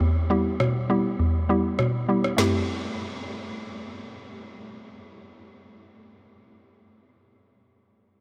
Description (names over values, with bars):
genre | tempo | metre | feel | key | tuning
dancehall | 101 BPM | 4/4 | straight | A minor | A4 = 437 Hz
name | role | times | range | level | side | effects
mallet-like synth pluck | accompaniment | 0.0-6.2 s | E2 to G4 | -26 LUFS | equal | chorus, low-pass filter
afro-pop drum kit | drums | 0.6-2.5 s | rim click, snare drum, toms | -33 LUFS | equal | overdrive
room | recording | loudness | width
wet huge ambient reverb, RT60 8.6 s | dreamy mix soaked in reverb | -25 LUFS | mono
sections
0.0-2.4 A section; 2.4-4.8 B section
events
none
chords
0.0 Em; 2.4 Am7